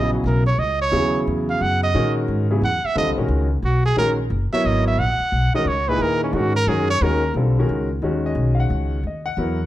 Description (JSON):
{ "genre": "modal jazz", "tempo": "177 BPM", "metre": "3/4", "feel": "swing 65% on 8ths", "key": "Eb phrygian", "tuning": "A4 = 440 Hz", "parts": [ { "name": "clear trumpet", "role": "melody", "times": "0.0-7.4 s", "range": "Db4 to Gb5", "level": "-22 LUFS", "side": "right 2 dB", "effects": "none" }, { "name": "clear concert grand piano", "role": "accompaniment", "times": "0.0-9.7 s", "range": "Bb2 to Gb5", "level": "-23 LUFS", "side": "left 1 dB", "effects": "none" }, { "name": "upright bass", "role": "bass", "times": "0.0-9.7 s", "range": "Gb1 to Bb2", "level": "-21 LUFS", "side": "equal", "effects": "none" } ], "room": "light reverb", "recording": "dark, warm production", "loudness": "-18 LUFS", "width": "side -14 dB against mid", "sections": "0.0-8.0 A section; 8.0-9.7 A section", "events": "trumpet solo 0.0-8.0", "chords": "0.0 Ebm7", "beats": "0.25 0.58 | 0.92 1.26 1.60 | 1.94 2.28 2.62 | 2.96 3.29 3.63 | 3.97 4.31 4.65 | 4.99 5.32 5.66 | 6.00 6.34 6.68 | 7.01 7.35 7.69 | 8.03 8.37 8.70 | 9.04 9.38" }